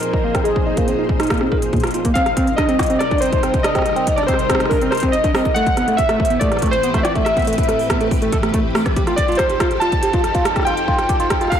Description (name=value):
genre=IDM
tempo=141 BPM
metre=4/4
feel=straight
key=C minor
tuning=A4 = 440 Hz
part: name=warbly lo-fi synth keys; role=melody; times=0.0-11.6 s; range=Ab4 to A5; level=-20 LUFS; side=equal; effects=chorus, tape echo
part: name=soft string machine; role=sustained chords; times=0.0-11.6 s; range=F2 to Eb5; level=-25 LUFS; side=left 1 dB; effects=ensemble chorus
part: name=industrial drum kit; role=drums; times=0.0-11.6 s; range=hi-hat, rim click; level=-24 LUFS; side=right 1 dB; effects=soft clipping on snare
part: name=bubbling stepped-filter texture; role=texture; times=0.0-2.2 s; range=C4 to C5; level=-34 LUFS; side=left 1 dB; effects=none
part: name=barky tine electric piano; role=arpeggios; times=0.1-11.5 s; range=Bb2 to Bb4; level=-21 LUFS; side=right 2 dB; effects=phaser, digital delay
part: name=electronic kick drum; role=drums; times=0.1-11.6 s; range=none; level=-21 LUFS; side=equal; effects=none
room=light reverb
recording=blown-out, overdriven recording, overdrive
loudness=-15 LUFS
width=side -9 dB against mid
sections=0.0-2.2 A section; 2.2-11.6 B section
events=drum fill 1.9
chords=0.0 Bb7sus4; 2.2 Cm7; 5.6 Am7; 9.0 F7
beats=0.03 | 0.45 0.88 1.30 1.73 | 2.16 2.58 3.01 3.43 | 3.86 4.28 4.71 5.13 | 5.56 5.99 6.41 6.84 | 7.26 7.69 8.11 8.54 | 8.96 9.39 9.81 10.24 | 10.67 11.09 11.52